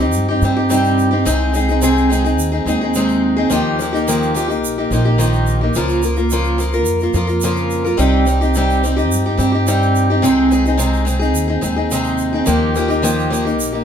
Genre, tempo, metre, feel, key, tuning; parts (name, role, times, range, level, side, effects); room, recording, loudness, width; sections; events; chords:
acoustic folk duo or small band; 107 BPM; 4/4; straight; Eb mixolydian; A4 = 440 Hz
picked steel-string acoustic guitar; accompaniment; 0.0-13.8 s; C3 to Bb4; -15 LUFS; equal
upright bass; bass; 0.0-13.8 s; Bb1 to G2; -19 LUFS; equal
egg shaker; percussion; 0.1-13.7 s; -28 LUFS; right 7 dB
moderate studio reverb, RT60 0.6 s; -14 LUFS; side -8 dB against mid
0.0-13.8 A section
0.0 Cm; 1.3 Ab/C; 3.5 Ebadd9; 5.7 Bbm/Db; 8.0 Cm; 10.2 Ab/C; 12.5 Ebadd9